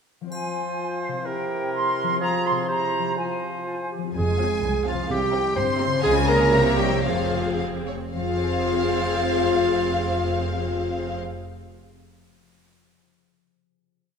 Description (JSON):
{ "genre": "cinematic, playful, whimsical film cue", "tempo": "106-130 BPM", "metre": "2/4", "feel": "straight", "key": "F minor", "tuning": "A4 = 443 Hz", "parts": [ { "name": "concert harp", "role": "arpeggios", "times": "0.2-12.0 s", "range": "C3 to Ab5", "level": "-32 LUFS", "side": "left 6 dB", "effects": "none" }, { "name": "bright flute section", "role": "second line", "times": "0.3-3.9 s", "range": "F5 to C6", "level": "-27 LUFS", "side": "right 2 dB", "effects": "none" }, { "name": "clear clarinet", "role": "second line", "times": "0.3-11.2 s", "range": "E4 to C5", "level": "-27 LUFS", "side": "equal", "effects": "none" }, { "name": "clear oboe", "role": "second line", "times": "0.3-3.9 s", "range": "Ab4 to C5", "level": "-32 LUFS", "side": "right 2 dB", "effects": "none" }, { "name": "mellow bassoon", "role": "accompaniment", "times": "0.3-3.9 s", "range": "C3 to F3", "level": "-30 LUFS", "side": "right 2 dB", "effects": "none" }, { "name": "triangle", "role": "percussion", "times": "0.3-1.2 s", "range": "none", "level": "-45 LUFS", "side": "left 1 dB", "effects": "none" }, { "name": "rich studio violin section", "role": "melody", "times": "4.2-11.2 s", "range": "F5 to C6", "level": "-29 LUFS", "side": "left 2 dB", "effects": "none" }, { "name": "warm French horn section", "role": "sustained chords", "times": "4.2-11.2 s", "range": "F3 to F4", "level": "-28 LUFS", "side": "left 4 dB", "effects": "none" }, { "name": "rich studio double bass section", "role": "bass", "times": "4.2-11.2 s", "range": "F1 to Db2", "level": "-30 LUFS", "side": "right 2 dB", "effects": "none" }, { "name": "warm studio cello section", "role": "bass", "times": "4.2-11.2 s", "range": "C2 to Db3", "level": "-30 LUFS", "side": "right 2 dB", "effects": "none" }, { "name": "rich studio violin section", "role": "second line", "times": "4.4-11.2 s", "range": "C5 to Bb5", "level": "-31 LUFS", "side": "left 1 dB", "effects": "none" }, { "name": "warm studio viola section", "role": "accompaniment", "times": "4.4-11.2 s", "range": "Ab3 to Ab4", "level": "-30 LUFS", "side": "right 1 dB", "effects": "none" } ], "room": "wet scoring stage reverb, RT60 1.9 s", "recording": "minimal, uncompressed stereo recording", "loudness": "-21 LUFS", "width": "side -6 dB against mid", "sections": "0.3-4.2 A section; 4.2-8.2 A section; 8.2-10.4 final chord", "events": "slowing down 5.6-8.2", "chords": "0.3 Fm; 1.3 C7; 2.2 Fm; 2.7 C7; 3.2 Fm; 5.1 C7; 6.0 Db; 6.5 C7b9; 7.0 Fm" }